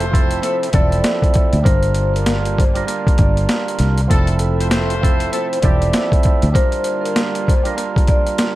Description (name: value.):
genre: hip hop, boom-bap hip-hop.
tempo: 98 BPM.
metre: 4/4.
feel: swing 60% on 16ths.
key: F major.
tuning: A4 = 441 Hz.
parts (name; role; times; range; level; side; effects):
vibraphone with soft mallets; melody; 0.0-8.2 s; A4 to D5; -23 LUFS; left 1 dB; high-pass filter, low-pass filter, analog delay.
percussive tonewheel organ; accompaniment; 0.0-8.6 s; F3 to Bb4; -23 LUFS; right 5 dB; overdrive, cassette tape, high-pass filter, low-pass filter, analog delay.
warm analog pad; sustained chords; 0.0-8.6 s; C3 to E5; -32 LUFS; equal; none.
warm horn section; stabs; 0.0-6.1 s; E3 to C5; -28 LUFS; left 3 dB; high-pass filter, low-pass filter, analog delay.
fingered electric bass; bass; 0.0-6.5 s; E1 to D2; -18 LUFS; equal; none.
boom bap sampler-style drum kit; drums; 0.0-8.6 s; hi-hat, kick drum, snare drum; -16 LUFS; equal; overdrive.
room: light reverb.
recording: echo-heavy mix.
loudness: -14 LUFS.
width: side -16 dB against mid.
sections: 0.0-8.6 A section.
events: none.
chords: 0.0 Fmaj7; 1.7 Gm7; 4.1 Fmaj7; 6.5 Gm7.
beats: 0.43 1.04 | 1.65 2.26 2.88 3.49 | 4.10 4.71 5.32 5.94 | 6.55 7.16 7.77 8.39.